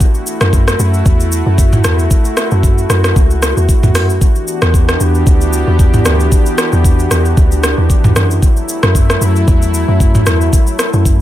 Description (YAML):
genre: amapiano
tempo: 114 BPM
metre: 4/4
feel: swing 55% on 16ths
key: unclear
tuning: A4 = 441 Hz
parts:
  - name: lush unison pad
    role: sustained chords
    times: 0.0-11.2 s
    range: E3 to G4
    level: -18 LUFS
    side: equal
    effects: chorus, sidechain pumping
  - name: afro-pop drum kit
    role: drums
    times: 0.0-11.2 s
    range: hi-hat, kick drum, rim click, shaker, toms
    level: -12 LUFS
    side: equal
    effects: none
  - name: deep log drum bass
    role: bass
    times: 0.4-11.2 s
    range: C#2 to F#2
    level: -13 LUFS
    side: equal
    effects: none
room: little or no reverb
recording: none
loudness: -9 LUFS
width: side -13 dB against mid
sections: 0.0-11.2 A section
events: none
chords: 0.0 F#m7; 4.2 Em9; 8.2 F#m7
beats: | 0.00 0.53 1.06 1.58 | 2.11 2.63 3.16 3.69 | 4.21 4.74 5.27 5.79 | 6.32 6.84 7.37 7.90 | 8.42 8.95 9.48 10.00 | 10.53 11.06